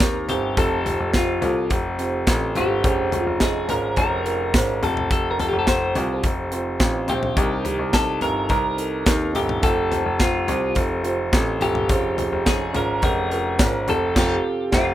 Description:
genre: piano-driven pop.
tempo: 106 BPM.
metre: 4/4.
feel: straight.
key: F mixolydian.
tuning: A4 = 443 Hz.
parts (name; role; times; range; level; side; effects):
twelve-string electric guitar; melody; 0.0-14.9 s; F4 to C5; -25 LUFS; left 1 dB; none.
dark upright piano; accompaniment; 0.0-14.9 s; G2 to Eb5; -25 LUFS; right 2 dB; none.
bright concert grand piano; bass; 0.0-14.9 s; F1 to Eb2; -24 LUFS; left 2 dB; none.
modern studio drum kit; drums; 0.0-14.9 s; crash cymbal, hi-hat, kick drum, snare drum, toms; -22 LUFS; equal; none.
room: moderate small room reverb, RT60 0.5 s.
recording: rough home demo mix.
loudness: -19 LUFS.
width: side -12 dB against mid.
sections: 0.0-14.9 A section.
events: band accent 14.2-14.9.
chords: 0.0 Cm7; 0.6 Fadd9; 2.8 Dbmaj7/F; 4.8 Fadd9; 7.4 Cm7; 9.6 Fadd9; 11.9 Dbmaj7/F; 13.9 Fadd9.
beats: 0.00 | 0.57 1.14 1.70 2.27 | 2.84 3.40 3.97 4.54 | 5.10 5.67 6.24 6.80 | 7.37 7.93 8.50 9.07 | 9.63 10.20 10.76 11.33 | 11.90 12.46 13.03 13.59 | 14.16 14.72.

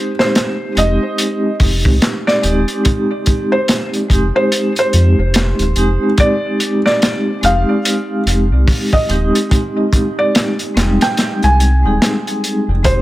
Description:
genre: trip hop.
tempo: 72 BPM.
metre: 4/4.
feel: swing 60% on 16ths.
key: F dorian.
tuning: A4 = 440 Hz.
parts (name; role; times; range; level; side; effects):
felt-muted upright piano; melody; 0.0-13.0 s; C5 to Ab5; -19 LUFS; equal; tape echo.
vibraphone with medium mallets; accompaniment; 0.0-13.0 s; G3 to Ab4; -17 LUFS; equal; tremolo, tape echo.
crunchy breakbeat drum kit; drums; 0.2-13.0 s; hi-hat, kick drum, snare drum; -16 LUFS; equal; none.
round analog bass; bass; 0.8-13.0 s; Eb1 to F2; -14 LUFS; equal; none.
room: little or no reverb.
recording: none.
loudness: -12 LUFS.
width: side -16 dB against mid.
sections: 0.0-13.0 A section.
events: none.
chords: 0.0 Fm7.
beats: 0.35 1.18 2.01 | 2.85 3.68 4.51 5.35 | 6.18 7.01 7.85 8.68 | 9.51 10.35 11.18 12.01 | 12.85.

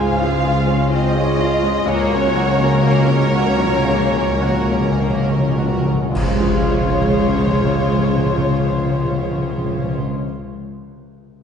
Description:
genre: cinematic, emotional film score for orchestra.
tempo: 50-64 BPM.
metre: 4/4.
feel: rubato.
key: Db major.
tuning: A4 = 438 Hz.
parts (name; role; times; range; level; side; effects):
dark studio violin section; melody; 0.0-10.0 s; Db5 to F5; -23 LUFS; left 1 dB; none.
warm symphonic violin section; second line; 0.0-10.0 s; Bb3 to C5; -24 LUFS; left 1 dB; none.
dark symphonic viola section; accompaniment; 0.0-10.0 s; Db3 to F4; -26 LUFS; right 2 dB; none.
felt-muted upright piano; accompaniment; 0.0-11.4 s; Db2 to Ab4; -24 LUFS; equal; none.
dark studio double bass section; bass; 0.0-10.0 s; Db2; -22 LUFS; left 1 dB; none.
warm symphonic cello section; bass; 0.0-10.0 s; Db2; -23 LUFS; equal; none.
timpani; percussion; 1.9-10.0 s; Db3; -22 LUFS; left 1 dB; none.
clash cymbals and concert bass drum; percussion; 6.2-8.3 s; none; -26 LUFS; right 1 dB; none.
room: wet scoring stage reverb, RT60 1.9 s.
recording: heard from further back in the room, nothing above 10.4 kHz.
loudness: -15 LUFS.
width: side -7 dB against mid.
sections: 0.0-6.1 A section; 6.1-10.6 B section.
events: slowing down 0.0-6.1; timpani fill 1.9-6.1; band accent 6.1-7.3.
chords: 0.0 Dbmaj7; 1.9 Gb/Db; 6.1 Dbmaj7.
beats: 0.92 | 1.87 2.84 3.87 4.99 | 6.14 7.25 8.37 9.48.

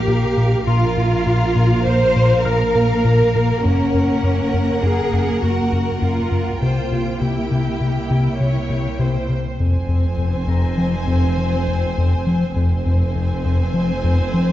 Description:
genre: cinematic, suspense film score.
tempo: 101 BPM.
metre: 5/4.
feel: straight.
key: F minor from 9.6 s.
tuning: A4 = 440 Hz.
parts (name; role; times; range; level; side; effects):
rich studio violin section; melody; 0.0-14.5 s; F5 to Ab5; -31 LUFS; left 2 dB; none.
rich studio violin section; second line; 0.0-14.5 s; G4 to Db5; -27 LUFS; left 1 dB; none.
warm studio viola section; accompaniment; 0.0-14.5 s; Bb3 to C4; -26 LUFS; right 1 dB; none.
clear studio double bass section; bass; 0.0-14.5 s; F1 to C2; -25 LUFS; right 3 dB; none.
rich symphonic cello section; bass; 0.0-14.5 s; F2 to C5; -23 LUFS; right 1 dB; none.
round analog bass; riff; 0.1-14.5 s; F2 to F3; -19 LUFS; left 1 dB; none.
concert harp; texture; 0.7-14.4 s; Bb5 to Bb6; -35 LUFS; left 6 dB; none.
room: moderate concert hall reverb, RT60 2.3 s.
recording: dark, warm production, nothing above 7.7 kHz.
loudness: -16 LUFS.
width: side -13 dB against mid.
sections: 0.0-9.6 A section; 9.6-14.5 B section.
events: none.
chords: 0.0 Bb5; 3.6 Gb; 6.6 C7; 9.6 Fm.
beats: 0.08 | 0.68 1.27 1.86 2.46 3.05 | 3.65 4.24 4.83 5.43 6.02 | 6.62 7.21 7.80 8.40 8.99 | 9.59 10.18 10.78 11.37 11.96 | 12.56 13.15 13.74 14.34.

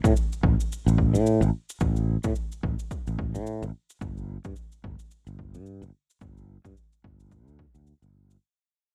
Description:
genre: organic downtempo.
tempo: 109 BPM.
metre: 4/4.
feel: swing 57% on 16ths.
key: unclear.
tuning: A4 = 439 Hz.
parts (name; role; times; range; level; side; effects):
sustaining fretless electric bass; bass; 0.0-8.4 s; G1 to A2; -27 LUFS; equal; none.
electronic kick drum; drums; 0.0-7.7 s; none; -31 LUFS; equal; overdrive, studio reverb.
shaker; drums; 0.0-8.4 s; none; -48 LUFS; equal; overdrive, studio reverb.
room: little or no reverb.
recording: worn, warbling old tape, cassette tape, warbly pitch drift.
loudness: -26 LUFS.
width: mono.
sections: 0.0-8.4 A section.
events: fade-out 0.0-8.4.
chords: none.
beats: 0.15 0.70 1.25 | 1.80 2.35 2.91 3.46 | 4.01 4.56 5.11 5.66 | 6.21 6.76 7.31 7.86.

